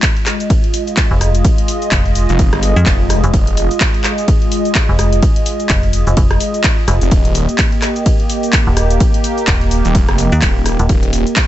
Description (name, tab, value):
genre	bass house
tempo	127 BPM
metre	4/4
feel	swing 58% on 16ths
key	F minor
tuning	A4 = 440 Hz
part	sweeping resonant pad	sustained chords	0.0-11.5 s	Ab3 to Eb5	-19 LUFS	right 1 dB	chorus, sidechain pumping
part	electronic kick drum	drums	0.0-11.5 s	none	-14 LUFS	equal	none
part	house drum kit	drums	0.0-11.5 s	handclaps, hi-hat, ride cymbal, rim click, shaker	-20 LUFS	equal	none
part	metallic FM bass	bass	1.1-10.9 s	Eb1 to F2	-13 LUFS	equal	tube saturation, sidechain pumping
part	phased detuned saw bass	bass	2.3-3.7, 7.0-11.2 s	Eb1 to G1	-16 LUFS	equal	phaser, tube saturation, sidechain pumping
room	digital ambience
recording	nothing above 8.0 kHz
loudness	-11 LUFS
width	side -13 dB against mid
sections	0.0-11.5 A section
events	none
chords	0.0 Fm7; 7.1 Eb